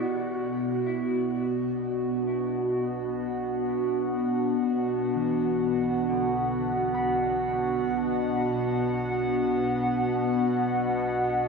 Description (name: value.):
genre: ambient.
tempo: free time.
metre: none.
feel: none.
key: B minor.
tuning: A4 = 439 Hz.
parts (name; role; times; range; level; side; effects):
warbly tape-like pad; sustained chords; 0.0-11.5 s; B2 to F#5; -25 LUFS; equal; chorus, built-in reverb, phaser, shimmer reverb.
mellow electric guitar; arpeggios; 0.0-9.0 s; D3 to B5; -41 LUFS; equal; tape echo, shimmer reverb.
dark symphonic double bass section; bass; 0.0-11.5 s; B1; -43 LUFS; left 1 dB; none.
organ-like drone; drone; 2.6-11.5 s; B3 to F#4; -42 LUFS; right 2 dB; none.
room: wet cathedral reverb, RT60 5.4 s.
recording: in a vast, echoing space.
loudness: -24 LUFS.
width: side -4 dB against mid.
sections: 0.1-11.5 A section.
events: fade-in on clean electric guitar 0.1-11.5; fade-in on double bass section 0.1-11.5.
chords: 0.1 Bm.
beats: free time.